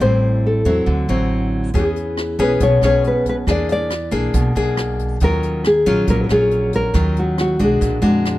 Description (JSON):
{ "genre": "bossa nova", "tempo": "138 BPM", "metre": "4/4", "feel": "straight", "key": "unclear", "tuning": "A4 = 440 Hz", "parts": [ { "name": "nylon-string guitar", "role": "melody", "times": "0.0-8.4 s", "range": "Gb4 to D5", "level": "-19 LUFS", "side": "left 1 dB", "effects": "none" }, { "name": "nylon-string guitar", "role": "accompaniment", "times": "0.0-8.4 s", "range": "A2 to G#4", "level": "-19 LUFS", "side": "left 1 dB", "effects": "none" }, { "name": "upright bass", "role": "bass", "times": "0.0-8.4 s", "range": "A1 to F2", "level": "-21 LUFS", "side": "right 1 dB", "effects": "none" }, { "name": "jazz brush drum kit", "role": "drums", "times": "1.7-8.4 s", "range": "hi-hat, kick drum, rim click", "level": "-25 LUFS", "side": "equal", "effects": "none" } ], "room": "small room ambience", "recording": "dry, close 1970s-style studio recording", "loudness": "-15 LUFS", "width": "side -16 dB against mid", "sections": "0.0-8.4 A section", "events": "none", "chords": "0.0 Am7; 0.9 D9; 1.7 E6; 3.5 E7#11; 5.2 Ebm9; 7.8 Bb7b13", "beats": "| 0.00 0.43 0.87 1.30 | 1.74 2.17 2.60 3.04 | 3.47 3.91 4.34 4.78 | 5.21 5.64 6.08 6.51 | 6.95 7.38 7.82 8.25" }